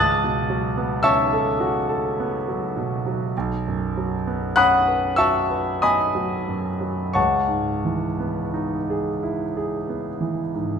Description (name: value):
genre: classical, impressionist solo piano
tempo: 43-54 BPM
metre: 3/4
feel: rubato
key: unclear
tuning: A4 = 440 Hz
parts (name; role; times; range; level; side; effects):
- clear concert grand piano; solo; 0.0-10.8 s; B1 to A6; -20 LUFS; equal; none
room: wet recital hall reverb, RT60 1.6 s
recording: minimal, uncompressed stereo recording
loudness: -20 LUFS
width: side -6 dB against mid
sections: 0.0-10.8 A section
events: none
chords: 0.0 B9sus4/C#; 3.3 Badd9; 7.2 C#m9